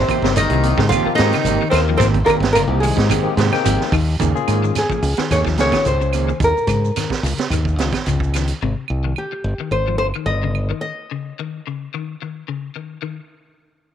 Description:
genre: afrobeat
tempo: 109 BPM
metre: 4/4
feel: straight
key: unclear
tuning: A4 = 440 Hz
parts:
  - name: nylon-string guitar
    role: melody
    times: 0.0-12.4 s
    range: G4 to F5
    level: -21 LUFS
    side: left 1 dB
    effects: none
  - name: breathy tenor saxophone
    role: second line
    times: 0.0-3.9 s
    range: Ab3 to F4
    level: -25 LUFS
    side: right 10 dB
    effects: none
  - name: clear trombone section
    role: second line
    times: 0.0-3.9 s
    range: Ab2 to F3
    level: -26 LUFS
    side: left 11 dB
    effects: none
  - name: clean electric guitar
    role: arpeggios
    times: 0.0-13.2 s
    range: C3 to F3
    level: -27 LUFS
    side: left 9 dB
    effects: ensemble chorus
  - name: modern bright fingered electric bass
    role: bass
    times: 0.0-10.7 s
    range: G1 to Ab2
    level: -19 LUFS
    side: equal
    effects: none
  - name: mellow electric guitar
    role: stabs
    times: 0.1-6.3 s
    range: Eb3 to Ab4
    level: -25 LUFS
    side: right 11 dB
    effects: tremolo
  - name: vintage drum kit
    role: drums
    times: 0.1-8.6 s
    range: hi-hat, kick drum, snare drum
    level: -23 LUFS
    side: right 4 dB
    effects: none
  - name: claves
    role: percussion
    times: 0.1-10.7 s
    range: none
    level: -31 LUFS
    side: right 13 dB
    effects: none
  - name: shekere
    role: percussion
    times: 0.1-8.6 s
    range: none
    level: -28 LUFS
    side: right 5 dB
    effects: none
  - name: barky tine electric piano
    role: accompaniment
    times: 0.2-5.9 s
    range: Bb3 to G5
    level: -25 LUFS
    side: left 13 dB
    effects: none
room: light reverb, studio reverb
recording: 1960s-style stereo with parts hard left and right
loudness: -16 LUFS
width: side -9 dB against mid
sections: 0.0-4.2 A section; 4.2-13.0 B section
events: none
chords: 0.0 Abmaj9; 4.2 Eb7sus4; 8.6 Abmaj7(no3) (rootless); 13.0 N.C.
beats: 0.36 0.91 1.46 | 2.01 2.56 3.10 3.65 | 4.20 4.75 5.30 5.85 | 6.40 6.95 7.50 8.05 | 8.61 9.16 9.71 10.26 | 10.81 11.36 11.92 12.47 | 13.02

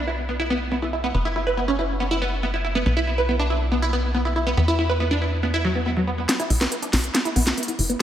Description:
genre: uplifting trance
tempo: 140 BPM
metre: 4/4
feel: straight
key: unclear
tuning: A4 = 440 Hz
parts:
  - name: wide unison pluck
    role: arpeggios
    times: 0.0-8.0 s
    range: F#3 to B4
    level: -23 LUFS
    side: right 1 dB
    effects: lush chorus, diffuse ambient delay
  - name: tight sequencer bass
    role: bass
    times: 0.0-8.0 s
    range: F#1 to E2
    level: -24 LUFS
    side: equal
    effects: none
  - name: house drum kit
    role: drums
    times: 6.3-8.0 s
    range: hi-hat, snare drum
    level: -22 LUFS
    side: equal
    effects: low-pass filter on snare, low-pass filter on hats
room: moderate lush hall reverb, RT60 1.7 s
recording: dreamy mix soaked in reverb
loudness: -20 LUFS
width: side -10 dB against mid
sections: 0.0-6.3 A section; 6.3-8.0 B section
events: build-up 6.3-8.0; drum fill 6.3-8.0; filter sweep on synth arpeggio sound 6.3-8.0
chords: 0.0 N.C.; 1.1 F#5; 2.9 N.C.; 4.6 E5; 6.3 N.C.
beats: 0.29 0.72 | 1.15 1.57 2.00 2.43 | 2.86 3.29 3.72 4.15 | 4.58 5.00 5.43 5.86 | 6.29 6.72 7.15 7.58

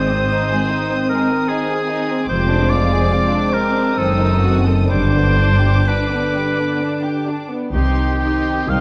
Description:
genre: classical, slow romantic movement for symphony orchestra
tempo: 60-75 BPM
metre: 3/4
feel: rubato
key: unclear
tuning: A4 = 440 Hz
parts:
  - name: rich symphonic violin section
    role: melody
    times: 0.0-8.8 s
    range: C6 to Eb6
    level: -33 LUFS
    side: equal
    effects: none
  - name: bright oboe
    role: second line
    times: 0.0-8.8 s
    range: G4 to F5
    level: -24 LUFS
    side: equal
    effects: none
  - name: warm symphonic violin section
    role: second line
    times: 0.0-8.8 s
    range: G3 to A4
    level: -28 LUFS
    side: equal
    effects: none
  - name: warm studio viola section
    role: accompaniment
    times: 0.0-8.8 s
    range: C4 to Eb4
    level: -27 LUFS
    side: equal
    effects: none
  - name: mellow French horn section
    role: sustained chords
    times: 0.0-8.8 s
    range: D3 to D4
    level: -25 LUFS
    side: equal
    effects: none
  - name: rich symphonic double bass section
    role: bass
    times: 0.0-8.8 s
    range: F1 to C2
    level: -23 LUFS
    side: equal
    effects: none
  - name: warm symphonic cello section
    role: bass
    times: 0.0-8.8 s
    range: C2 to Ab2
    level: -24 LUFS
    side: equal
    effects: none
room: moderate concert hall reverb, RT60 2.2 s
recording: dark, warm production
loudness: -17 LUFS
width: mono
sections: 0.0-8.8 A section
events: none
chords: 0.0 Ab; 2.3 Dm7b5/F; 4.0 F#dim7; 4.9 G; 7.7 Cm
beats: 0.69 1.49 | 2.29 3.11 3.98 | 4.90 5.87 6.81 | 7.74 8.69

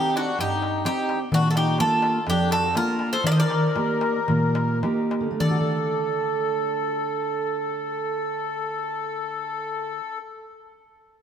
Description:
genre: greek folk, Greek bouzouki band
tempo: 103-128 BPM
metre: 4/4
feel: straight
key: unclear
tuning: A4 = 440 Hz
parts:
  - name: Greek bouzouki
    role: melody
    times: 0.0-10.2 s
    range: F#4 to Eb5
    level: -26 LUFS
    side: equal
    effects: none
  - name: accordion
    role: second line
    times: 0.0-10.2 s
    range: D4 to C5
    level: -28 LUFS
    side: left 4 dB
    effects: light tremolo tuning
  - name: fingerpicked steel-string acoustic guitar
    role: accompaniment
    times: 0.0-10.4 s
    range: F2 to A4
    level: -26 LUFS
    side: right 3 dB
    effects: none
  - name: darbuka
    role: percussion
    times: 0.0-5.7 s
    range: none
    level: -26 LUFS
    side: equal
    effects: none
room: wet plate reverb, RT60 3.0 s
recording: heard from further back in the room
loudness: -22 LUFS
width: side -8 dB against mid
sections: 0.0-5.4 A section; 5.4-10.1 B section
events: slowing down 1.3-5.4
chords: 0.0 Cm; 1.3 Bb; 3.3 Eb; 5.4 D5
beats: 0.39 0.86 | 1.33 1.80 2.27 2.76 | 3.25 3.76 4.29 4.83 | 5.40 5.99 6.57 7.15 | 7.74 8.32 8.90 9.49

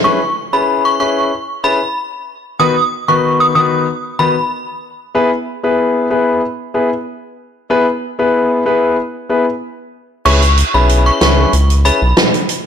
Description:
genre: dancehall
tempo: 94 BPM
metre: 4/4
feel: straight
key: C# minor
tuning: A4 = 440 Hz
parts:
  - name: synth chime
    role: melody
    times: 0.0-4.3, 10.3-12.0 s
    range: B5 to D#6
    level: -15 LUFS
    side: equal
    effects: ensemble chorus, phaser, tape echo
  - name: warm concert grand piano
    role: accompaniment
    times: 0.0-12.0 s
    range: D#3 to B4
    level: -15 LUFS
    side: left 3 dB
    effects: none
  - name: round analog bass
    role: bass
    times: 10.3-12.1 s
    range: B1 to C#2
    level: -12 LUFS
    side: equal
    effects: none
  - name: swinging big-band drum kit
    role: drums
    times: 10.3-12.6 s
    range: crash cymbal, hi-hat, rim click, snare drum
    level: -15 LUFS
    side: right 2 dB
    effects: soft clipping on kick, soft clipping on snare
room: moderate lush hall reverb, RT60 1.6 s, small room ambience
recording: blown-out, overdriven recording, overdrive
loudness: -12 LUFS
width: side -8 dB against mid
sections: 0.0-10.3 A section; 10.3-12.7 B section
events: kick muted 10.3-12.7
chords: 0.0 C#m7; 2.6 B/D#; 5.1 E; 10.3 C#m7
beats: | 0.04 0.68 1.32 1.96 | 2.60 3.23 3.87 4.51 | 5.15 5.79 6.42 7.06 | 7.70 8.34 8.98 9.62 | 10.26 10.89 11.53 12.17

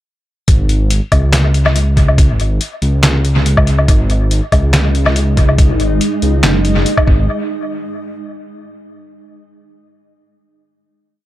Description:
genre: deep dubstep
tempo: 141 BPM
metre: 4/4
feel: swing 54% on 16ths, half-time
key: unclear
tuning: A4 = 436 Hz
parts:
  - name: dark detuned saw bass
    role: bass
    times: 0.5-7.3 s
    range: F#1 to C#2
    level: -13 LUFS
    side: equal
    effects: none
  - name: electronic kick drum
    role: drums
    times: 0.5-7.2 s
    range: none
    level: -12 LUFS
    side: equal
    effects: none
  - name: trip hop sampler-style drum kit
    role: drums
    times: 0.5-7.1 s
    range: handclaps, hi-hat, snare drum, woodblock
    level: -17 LUFS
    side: left 1 dB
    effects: dub echo
  - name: granular cloud pad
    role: sustained chords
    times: 4.9-7.1 s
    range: G#3 to D#4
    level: -20 LUFS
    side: equal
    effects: built-in reverb
room: little or no reverb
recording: echo-heavy mix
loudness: -11 LUFS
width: side -14 dB against mid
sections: 0.5-7.3 drop; 7.3-9.0 final hit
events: drop 0.5-7.3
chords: 0.5 G#5; 7.1 N.C.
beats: | 0.48 0.91 1.33 1.76 | 2.18 2.61 3.03 3.46 | 3.88 4.31 4.73 5.16 | 5.59 6.01 6.44 6.86

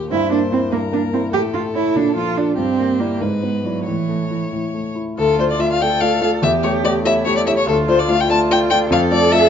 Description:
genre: quick classical-period movement for piano trio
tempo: 97 BPM (dotted quarters)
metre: 6/8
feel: rubato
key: D minor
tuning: A4 = 441 Hz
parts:
  - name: clear violin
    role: melody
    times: 0.0-9.5 s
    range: G4 to A5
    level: -20 LUFS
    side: left 5 dB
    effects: none
  - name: warm grand piano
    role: accompaniment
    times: 0.0-9.5 s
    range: D2 to D5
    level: -19 LUFS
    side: left 1 dB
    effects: none
  - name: warm cello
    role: second line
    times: 0.1-9.5 s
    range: E3 to A4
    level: -21 LUFS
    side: right 6 dB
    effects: none
room: moderate stone room reverb, RT60 1.2 s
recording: dark, warm production, nothing above 7.7 kHz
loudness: -15 LUFS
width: side -8 dB against mid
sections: 0.0-5.2 A section; 5.2-9.5 B section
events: none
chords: 0.1 Edim/G; 1.3 A; 2.0 Bb; 2.6 Em7b5/G; 3.2 E7/G#; 3.9 A; 5.2 Dm; 6.4 A7/E; 7.7 Dm; 8.9 Dm/F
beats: | 0.11 0.72 | 1.34 1.96 | 2.58 3.21 | 3.87 4.52 | 5.18 5.81 | 6.43 7.05 | 7.67 8.29 | 8.91

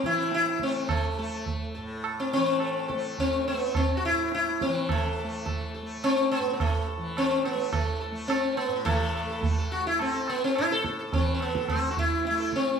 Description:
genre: indian classical, Hindustani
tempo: 106 BPM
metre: 7/4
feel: straight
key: unclear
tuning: A4 = 440 Hz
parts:
  - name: sitar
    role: melody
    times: 0.0-12.8 s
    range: A3 to A4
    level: -26 LUFS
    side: left 1 dB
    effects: none
  - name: tanpura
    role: drone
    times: 0.0-12.8 s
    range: A2 to A3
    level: -36 LUFS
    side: left 1 dB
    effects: none
  - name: tabla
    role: percussion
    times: 0.0-12.8 s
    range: none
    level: -31 LUFS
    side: right 4 dB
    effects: none
room: moderate recital hall reverb, RT60 1.4 s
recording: close, detailed microphones, lossy compression artefacts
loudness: -25 LUFS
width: side -6 dB against mid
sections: 0.0-8.9 A section; 8.9-12.8 B section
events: none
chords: none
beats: 0.32 | 0.89 1.46 2.04 2.61 3.18 3.75 4.32 | 4.89 5.46 6.03 6.60 7.17 7.73 8.30 | 8.86 9.43 9.99 10.56 11.12 11.69 12.25

